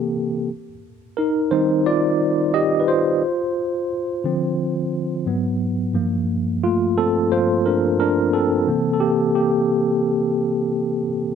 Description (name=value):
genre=R&B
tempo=88 BPM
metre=4/4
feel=swing 55% on 16ths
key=G minor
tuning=A4 = 440 Hz
part: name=tine electric piano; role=solo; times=0.0-11.3 s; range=G2 to Eb5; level=-18 LUFS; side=equal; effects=fast stereo tremolo
room=light reverb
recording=none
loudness=-18 LUFS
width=side -7 dB against mid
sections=0.0-11.3 A section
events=tine electric piano solo 0.0-11.3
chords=0.5 Eb69; 3.2 Dm7; 5.3 Abm7; 5.9 Gm9; 8.7 C7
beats=| 0.48 1.16 1.85 2.53 | 3.21 3.89 4.57 5.25 | 5.94 6.62 7.30 7.98 | 8.66 9.35 10.03 10.71